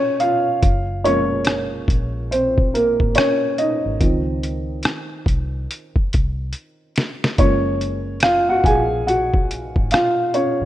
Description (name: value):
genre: lo-fi hip hop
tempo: 71 BPM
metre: 4/4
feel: swing 63% on 16ths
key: Gb lydian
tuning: A4 = 441 Hz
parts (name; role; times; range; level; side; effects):
- dark upright piano; accompaniment; 0.0-10.7 s; Eb3 to Ab5; -18 LUFS; equal; low-pass filter
- lo-fi sampler-style drum kit; drums; 0.2-10.6 s; hi-hat, kick drum, rim click, snare drum; -19 LUFS; equal; none
- vintage muted fingered electric bass; bass; 0.6-10.7 s; Gb1 to Db2; -26 LUFS; equal; none
room: light reverb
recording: rough home demo mix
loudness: -17 LUFS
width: side -13 dB against mid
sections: 0.0-10.7 A section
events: upright piano solo 0.0-10.7; drum fill 6.5-7.4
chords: 0.0 Dbmaj9; 0.6 Gbmaj9; 4.0 Dbmaj9; 7.4 Gbmaj9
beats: | 0.62 1.47 2.31 3.16 | 4.00 4.85 5.70 6.54 | 7.39 8.23 9.08 9.92